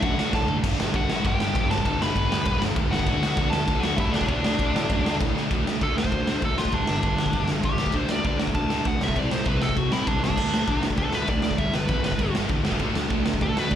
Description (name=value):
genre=punk rock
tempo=197 BPM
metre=4/4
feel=straight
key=D major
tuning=A4 = 440 Hz
part: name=nasal lead guitar with a parked wah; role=melody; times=0.0-13.8 s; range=D4 to B5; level=-28 LUFS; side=left 1 dB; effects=overdrive, slapback echo, ping-pong delay
part: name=sludgy distorted guitar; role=riff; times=0.0-13.8 s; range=G2 to D4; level=-32 LUFS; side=left 9 dB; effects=overdrive, slapback echo
part: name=sludgy distorted guitar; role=riff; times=0.0-13.8 s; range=G2 to D4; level=-32 LUFS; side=right 11 dB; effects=overdrive
part: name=sludgy distorted guitar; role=riff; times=0.0-13.8 s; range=G2 to D4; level=-32 LUFS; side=equal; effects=overdrive
part: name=fuzz picked electric bass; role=bass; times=0.0-13.8 s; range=F#1 to A2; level=-30 LUFS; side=equal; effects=overdrive
part: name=raw garage drum kit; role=drums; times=0.0-13.8 s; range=crash cymbal, kick drum, ride cymbal, snare drum, toms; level=-25 LUFS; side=equal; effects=none
room=little or no reverb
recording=live gig heard through the venue's PA, club reverb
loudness=-21 LUFS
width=side -10 dB against mid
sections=0.0-5.5 A section; 5.5-13.8 B section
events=drum fill 0.3-0.6, 5.4; lead electric guitar solo 5.5-13.8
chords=0.0 D; 0.6 G; 3.1 D; 5.5 D5; 6.7 G5; 7.8 D5; 9.0 C5; 10.4 D5; 11.6 G; 12.7 D5